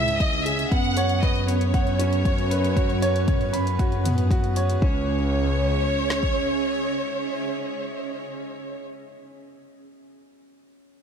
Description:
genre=piano and strings electronica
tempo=117 BPM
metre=4/4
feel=straight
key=C# minor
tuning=A4 = 440 Hz
part: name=bright studio violin section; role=melody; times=0.0-8.8 s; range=C#5 to F#5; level=-28 LUFS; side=equal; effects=none
part: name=granular cloud pad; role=sustained chords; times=0.0-8.8 s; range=C#4 to D#6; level=-30 LUFS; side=right 3 dB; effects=built-in reverb, sidechain pumping
part: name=warm grand piano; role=riff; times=0.0-11.0 s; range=B3 to B5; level=-29 LUFS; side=right 1 dB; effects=ping-pong delay
part: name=rich studio double bass section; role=bass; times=0.0-6.3 s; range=C#2 to F#2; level=-25 LUFS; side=equal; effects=sidechain pumping
part: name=deep house drum kit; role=drums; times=0.1-4.8 s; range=hi-hat, toms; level=-33 LUFS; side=right 1 dB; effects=studio reverb
part: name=deep house drum kit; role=drums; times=0.2-6.3 s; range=kick drum, snare drum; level=-23 LUFS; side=equal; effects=studio reverb
room=light reverb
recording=none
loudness=-21 LUFS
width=side -7 dB against mid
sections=0.0-4.8 A section; 4.8-8.9 B section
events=drop 0.0-4.8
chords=0.0 C#madd9; 0.7 F#sus4; 4.8 C#madd9

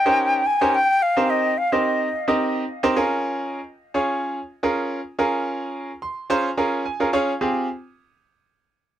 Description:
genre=pop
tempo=108 BPM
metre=4/4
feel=straight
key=unclear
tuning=A4 = 440 Hz
part: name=mellow silver concert flute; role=melody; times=0.0-2.3 s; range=Eb5 to Ab5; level=-20 LUFS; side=left 1 dB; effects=tape echo
part: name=bright grand piano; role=accompaniment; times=0.1-7.7 s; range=C4 to C6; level=-21 LUFS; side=right 1 dB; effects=none
room=light reverb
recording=dry, close 1970s-style studio recording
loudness=-20 LUFS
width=side -11 dB against mid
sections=0.0-3.0 A section; 3.0-7.4 B section; 7.4-9.0 C section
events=grand piano fill 5.7-7.4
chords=0.0 Eb7; 0.7 Cm7; 3.0 Bbm7; 7.4 Fmadd9

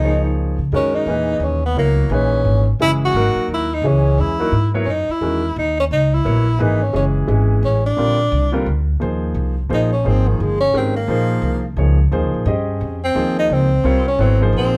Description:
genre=modal jazz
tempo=174 BPM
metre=3/4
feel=swing 62% on 8ths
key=F# mixolydian, Eb mixolydian from 9.0 s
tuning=A4 = 439 Hz
part: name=breathy tenor saxophone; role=melody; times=0.0-14.8 s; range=Eb3 to F#4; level=-22 LUFS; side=equal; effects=none
part: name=warm grand piano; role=accompaniment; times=0.0-14.8 s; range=A#2 to Eb5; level=-24 LUFS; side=equal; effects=none
part: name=upright bass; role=bass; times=0.0-14.8 s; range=F#1 to Db3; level=-20 LUFS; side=equal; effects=none
room=moderate large studio reverb, RT60 0.9 s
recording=band playing live in one room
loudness=-18 LUFS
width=mono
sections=0.7-9.0 A section; 9.0-14.8 B section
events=tenor saxophone solo 9.0-14.8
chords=0.0 Db69; 0.7 F#13; 2.8 C#m/F#; 4.9 F#13; 6.9 C#m/F#; 8.0 A#; 9.0 Eb7sus4; 13.2 Ab

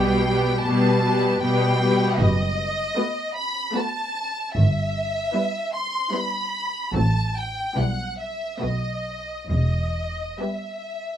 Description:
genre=classical, slow romantic movement for string orchestra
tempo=66-79 BPM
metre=3/4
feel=rubato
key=E minor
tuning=A4 = 440 Hz
part: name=warm symphonic violin section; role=melody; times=0.0-11.2 s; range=D#5 to C6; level=-26 LUFS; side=equal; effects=none
part: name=rich symphonic violin section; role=second line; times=0.0-11.1 s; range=E4 to B4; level=-26 LUFS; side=left 1 dB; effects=none
part: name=rich symphonic viola section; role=accompaniment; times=0.0-11.1 s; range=F#3 to C4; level=-25 LUFS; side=left 1 dB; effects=none
part: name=rich symphonic cello section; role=bass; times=0.0-10.2 s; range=E2 to B2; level=-26 LUFS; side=right 1 dB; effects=none
part: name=warm symphonic double bass section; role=bass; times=0.0-10.2 s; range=E1 to B1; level=-23 LUFS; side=right 1 dB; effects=none
room=light reverb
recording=dark, warm production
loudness=-21 LUFS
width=side -10 dB against mid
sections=0.0-11.2 A section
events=none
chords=0.0 G/B; 2.2 B7/F#; 4.5 Em/G; 6.9 F#dim/A; 7.8 Em/B; 8.6 B7; 9.5 Em

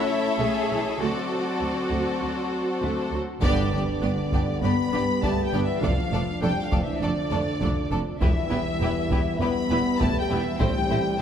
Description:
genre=cinematic, epic orchestral film score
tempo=100 BPM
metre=4/4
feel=straight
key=unclear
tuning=A4 = 440 Hz
part: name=clear symphonic violin section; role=melody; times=0.0-11.2 s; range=D5 to B5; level=-31 LUFS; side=left 4 dB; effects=none
part: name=bright symphonic violin section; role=second line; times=0.0-11.2 s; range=E4 to D5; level=-33 LUFS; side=left 3 dB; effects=none
part: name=rich symphonic viola section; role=accompaniment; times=0.0-11.0 s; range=D3 to F#4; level=-31 LUFS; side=right 2 dB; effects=none
part: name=warm French horn section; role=sustained chords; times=0.0-11.2 s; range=D3 to C#4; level=-29 LUFS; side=left 3 dB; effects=none
part: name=rich symphonic cello section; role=bass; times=0.0-11.2 s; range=E2 to G#4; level=-32 LUFS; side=right 3 dB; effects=none
part: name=rich symphonic double bass section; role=bass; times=0.4-11.2 s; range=E1 to D2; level=-31 LUFS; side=right 3 dB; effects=none
part: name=dark trombone section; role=sustained chords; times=3.4-11.2 s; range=E3 to D4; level=-31 LUFS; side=right 3 dB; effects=none
part: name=taiko ensemble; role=drums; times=3.4-11.2 s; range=none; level=-28 LUFS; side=equal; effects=none
part: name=impact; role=sound effects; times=3.4-5.8 s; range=none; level=-37 LUFS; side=equal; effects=none
part: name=timpani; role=percussion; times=10.6-11.2 s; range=A2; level=-31 LUFS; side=equal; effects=none
room=wet concert hall reverb, RT60 2.4 s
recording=none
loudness=-22 LUFS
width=side -8 dB against mid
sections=0.0-3.4 A section; 3.4-11.2 B section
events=band accent 3.4-4.0; impact 3.4-5.8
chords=0.0 Aadd9; 1.0 D7; 3.4 G; 5.8 Dm/F; 8.2 Em; 10.6 Am

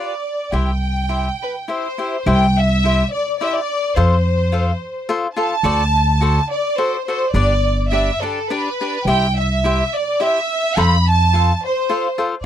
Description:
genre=mexican folk, mariachi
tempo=106 BPM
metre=3/4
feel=rubato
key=C major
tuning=A4 = 438 Hz
part: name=clear studio violin section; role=melody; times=0.0-12.5 s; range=A4 to B5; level=-19 LUFS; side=right 1 dB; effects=none
part: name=cavaquinho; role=accompaniment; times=0.0-12.3 s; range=D4 to F5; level=-21 LUFS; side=left 4 dB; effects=none
part: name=upright bass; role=bass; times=0.5-11.5 s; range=G1 to F2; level=-16 LUFS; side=equal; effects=none
room=little or no reverb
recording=dry, close 1970s-style studio recording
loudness=-16 LUFS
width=side -10 dB against mid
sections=0.0-2.3 A section; 2.3-12.5 A section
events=none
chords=0.0 G7; 0.5 C; 4.0 F; 5.6 D7; 7.3 G; 9.1 C; 10.8 F

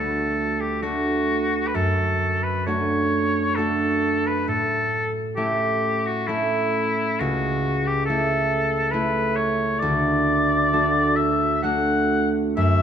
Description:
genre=classical, romantic duo for oboe and harp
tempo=66 BPM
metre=3/4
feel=rubato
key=D major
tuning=A4 = 440 Hz
part: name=clear oboe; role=melody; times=0.0-12.8 s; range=E4 to F#5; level=-23 LUFS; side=left 3 dB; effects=none
part: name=concert harp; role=accompaniment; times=0.0-12.8 s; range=C#2 to F#4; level=-22 LUFS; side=right 2 dB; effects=none
room=moderate scoring stage reverb, RT60 1.8 s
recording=close, detailed microphones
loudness=-20 LUFS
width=side -8 dB against mid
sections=0.0-12.8 A section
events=none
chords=0.0 D; 1.7 D/F#; 4.5 A; 7.2 A/C#; 9.8 D

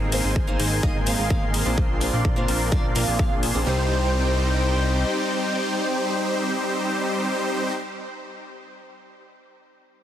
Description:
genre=EDM, festival progressive house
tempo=127 BPM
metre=4/4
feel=straight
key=C minor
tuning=A4 = 438 Hz
part: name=picked old ladder-braced acoustic guitar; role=accompaniment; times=0.0-7.7 s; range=G3 to F5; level=-31 LUFS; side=right 2 dB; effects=sidechain pumping, tape echo
part: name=lush unison pad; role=sustained chords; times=0.0-7.7 s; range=Eb4 to C6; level=-31 LUFS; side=left 1 dB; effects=chorus, sidechain pumping
part: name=supersaw chords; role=riff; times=0.0-7.7 s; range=G3 to D5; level=-25 LUFS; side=equal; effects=sidechain pumping, low-pass filter, tape echo
part: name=fat analog bass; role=bass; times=0.0-5.0 s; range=Ab1 to C2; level=-25 LUFS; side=equal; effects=sidechain pumping
part: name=electronic hi-hat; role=drums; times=0.1-3.5 s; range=none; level=-29 LUFS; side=left 2 dB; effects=none
part: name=electronic kick drum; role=drums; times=0.4-3.3 s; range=none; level=-23 LUFS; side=equal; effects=none
room=light reverb, digital ambience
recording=dense, heavily limited modern master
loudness=-20 LUFS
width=side -11 dB against mid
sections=0.0-3.7 A section; 3.7-7.4 B section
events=filter sweep on supersaw synth 0.0-3.7; filter sweep on analog synth bass 0.0-3.7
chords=0.0 Abadd9; 1.8 Bbadd9; 3.7 Cm

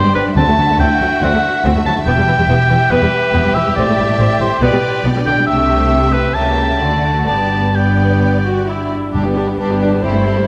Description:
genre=classical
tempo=124-144 BPM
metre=4/4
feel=rubato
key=G major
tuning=A4 = 441 Hz
part: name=warm symphonic violin section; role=melody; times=0.0-10.5 s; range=D4 to E5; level=-28 LUFS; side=equal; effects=none
part: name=dark symphonic violin section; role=second line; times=0.0-10.5 s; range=B3 to G4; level=-26 LUFS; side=equal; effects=none
part: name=warm cor anglais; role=second line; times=0.0-8.7 s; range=B4 to A5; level=-18 LUFS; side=equal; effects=none
part: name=warm symphonic viola section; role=accompaniment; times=0.0-10.5 s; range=D3 to G4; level=-23 LUFS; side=equal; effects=none
part: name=concert harp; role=arpeggios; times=0.0-10.5 s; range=G2 to B4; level=-26 LUFS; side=equal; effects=none
part: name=rich symphonic cello section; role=bass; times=0.0-10.4 s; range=D2 to D3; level=-22 LUFS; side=equal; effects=none
part: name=warm symphonic double bass section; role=bass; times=0.1-10.4 s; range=E1 to D2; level=-21 LUFS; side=equal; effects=none
part: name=timpani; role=percussion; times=0.4-1.0, 9.1-10.5 s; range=G2 to D3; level=-24 LUFS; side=equal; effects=none
part: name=mellow clarinet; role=second line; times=9.4-10.5 s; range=G4 to C5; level=-22 LUFS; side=equal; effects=none
room=wet scoring stage reverb, RT60 1.6 s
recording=none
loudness=-14 LUFS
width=mono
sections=0.0-9.1 A section; 9.1-10.5 B section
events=none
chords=0.4 D69; 2.1 Em; 3.8 Am7; 4.6 G/B; 5.5 C6; 6.4 C#dim7; 6.8 D; 7.3 G

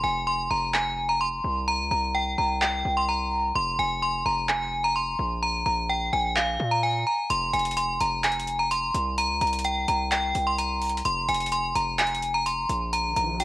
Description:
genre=hip hop, trap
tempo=128 BPM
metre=4/4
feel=half-time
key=F minor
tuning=A4 = 438 Hz
part: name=metallic FM bell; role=melody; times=0.0-13.4 s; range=F5 to C6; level=-24 LUFS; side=equal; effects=chorus, cassette tape
part: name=distorted 808-style bass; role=bass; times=0.0-13.4 s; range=F1 to Bb2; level=-32 LUFS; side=equal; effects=distortion
part: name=trap drum kit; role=drums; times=0.7-13.4 s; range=handclaps, hi-hat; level=-29 LUFS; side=equal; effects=cassette tape
part: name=riser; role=sound effects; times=13.1-13.4 s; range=none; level=-36 LUFS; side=right 1 dB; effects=none
room=light reverb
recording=home recording on cassette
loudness=-23 LUFS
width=side -18 dB against mid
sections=0.0-13.4 A section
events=break 0.0-7.3; riser 13.1-13.4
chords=0.0 F5; 1.7 Bbsus2/C; 3.6 F5; 5.4 Fmadd11/Bb (rootless); 7.3 F5; 9.2 Bbsus2/C; 11.1 F5; 12.9 N.C.

